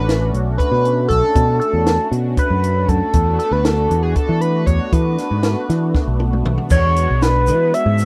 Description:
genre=progressive instrumental, band music in an uneven meter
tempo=235 BPM (eighths)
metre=7/8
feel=straight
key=unclear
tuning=A4 = 440 Hz
part: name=sync lead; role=melody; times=0.0-8.1 s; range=G#4 to E5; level=-21 LUFS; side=equal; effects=chorus
part: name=warm analog pad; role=accompaniment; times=0.0-8.1 s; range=G#3 to F#4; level=-28 LUFS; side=equal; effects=chorus
part: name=picked electric bass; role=bass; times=0.0-8.1 s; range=A1 to E3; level=-20 LUFS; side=equal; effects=none
part: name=compact cocktail drum kit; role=drums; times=0.1-8.1 s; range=crash cymbal, hi-hat, kick drum, snare drum, toms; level=-22 LUFS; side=equal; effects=none
part: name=tube shaker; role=percussion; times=6.7-8.1 s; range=none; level=-38 LUFS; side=equal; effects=none
room=light reverb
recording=rough home demo mix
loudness=-17 LUFS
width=mono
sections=0.0-6.7 A section; 6.7-8.1 B section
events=drum fill 5.9-6.7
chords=0.0 Bm7; 3.1 E7sus4; 6.7 E7

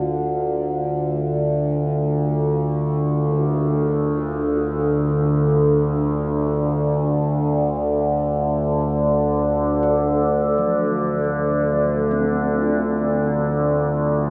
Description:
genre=dark ambient drone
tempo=free time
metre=none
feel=none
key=D minor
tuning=A4 = 440 Hz
part: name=deep dark ambient pad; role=sustained chords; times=0.0-14.3 s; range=D4 to F5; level=-25 LUFS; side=equal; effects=chorus, built-in reverb
part: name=gamelan-type bronze metallophone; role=arpeggios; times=0.0-3.3, 9.8-14.3 s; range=F3 to A4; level=-34 LUFS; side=equal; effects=none
part: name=overtone-sweeping drone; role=drone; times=0.0-14.3 s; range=D2 to D3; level=-22 LUFS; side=equal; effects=chorus, built-in reverb
part: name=bronze singing bowl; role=texture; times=0.0-14.3 s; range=F4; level=-38 LUFS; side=equal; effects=none
part: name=tam-tam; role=percussion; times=3.3-3.5 s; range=none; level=barely audible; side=none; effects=none
room=wet huge ambient reverb, RT60 8.1 s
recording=none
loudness=-20 LUFS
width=mono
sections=0.0-14.3 A section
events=none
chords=0.0 Dm

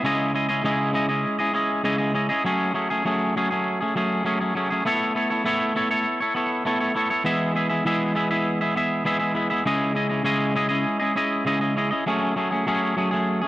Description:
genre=rock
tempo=100 BPM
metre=4/4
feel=straight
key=unclear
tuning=A4 = 441 Hz
part: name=twangy electric guitar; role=solo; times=0.0-13.5 s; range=C#3 to E5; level=-21 LUFS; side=equal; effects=tape echo
room=little or no reverb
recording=dry, close 1970s-style studio recording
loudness=-21 LUFS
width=side -16 dB against mid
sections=0.0-13.5 A section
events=none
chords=0.0 C#madd9; 2.5 F#madd9; 4.9 Aadd9; 7.3 E; 9.7 C#madd9; 12.1 F#madd9

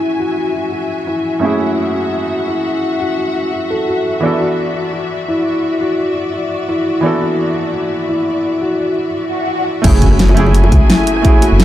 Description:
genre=liquid drum and bass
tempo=171 BPM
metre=4/4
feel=swing 54% on 16ths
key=F# minor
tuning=A4 = 439 Hz
part: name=clear baby grand piano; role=accompaniment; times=0.0-11.6 s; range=F#2 to A4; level=-20 LUFS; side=right 2 dB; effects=low-pass filter, tape echo
part: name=rich symphonic string section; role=sustained chords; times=0.0-11.6 s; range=A3 to G#5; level=-22 LUFS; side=left 2 dB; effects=sidechain pumping
part: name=felt-muted upright piano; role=arpeggios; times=0.0-11.6 s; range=E4 to A4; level=-18 LUFS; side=left 1 dB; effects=low-pass filter, dub echo
part: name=swell and impact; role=sound effects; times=9.2-11.2 s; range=none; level=-18 LUFS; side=equal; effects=none
part: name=dark detuned saw bass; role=bass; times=9.8-11.6 s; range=F#1 to C#2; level=-11 LUFS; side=equal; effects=none
part: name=electronic kick drum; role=drums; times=9.8-11.3 s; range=none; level=-12 LUFS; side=equal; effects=none
part: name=pop drum kit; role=drums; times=9.8-11.6 s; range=crash cymbal, hi-hat, rim click, snare drum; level=-16 LUFS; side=left 1 dB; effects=none
part: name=bongos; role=percussion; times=10.3-10.7 s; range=none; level=-23 LUFS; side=left 3 dB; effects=none
room=light reverb, small room ambience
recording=dark, warm production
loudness=-13 LUFS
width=side -13 dB against mid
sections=0.0-9.8 A section; 9.8-11.6 B section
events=swell 9.2-9.8; drop 9.8-11.6; impact 9.8-11.2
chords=0.0 F#m9; 4.2 E9sus4; 9.8 F#m9

